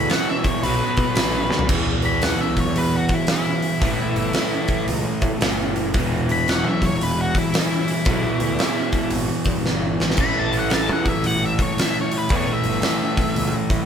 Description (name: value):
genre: blues rock power trio and southern rock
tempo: 113 BPM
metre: 4/4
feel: swing 64% on 8ths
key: unclear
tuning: A4 = 440 Hz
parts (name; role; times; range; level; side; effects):
- octave-fuzz lead guitar; melody; 0.0-13.5 s; E4 to B5; -25 LUFS; left 3 dB; distortion
- raw garage guitar; riff; 0.0-13.9 s; E2 to B3; -23 LUFS; equal; overdrive, spring reverb
- fuzz picked electric bass; bass; 0.0-13.8 s; E1 to B2; -27 LUFS; equal; overdrive
- huge arena drum kit; drums; 0.1-13.8 s; crash cymbal, hi-hat, kick drum, snare drum, toms; -22 LUFS; equal; none
room: light reverb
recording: band playing live in one room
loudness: -18 LUFS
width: side -8 dB against mid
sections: 0.0-1.7 A section; 1.7-13.9 A section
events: lead electric guitar solo 0.0-13.9; drum fill 1.4, 9.7-10.2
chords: 0.0 E5; 0.6 Bm7; 1.7 E5; 3.8 A7(no3); 6.0 E5; 10.2 A5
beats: 0.12 0.65 1.18 | 1.71 2.24 2.77 3.30 | 3.83 4.36 4.89 5.42 | 5.95 6.48 7.01 7.54 | 8.08 8.61 9.14 9.67 | 10.20 10.73 11.26 11.79 | 12.31 12.84 13.37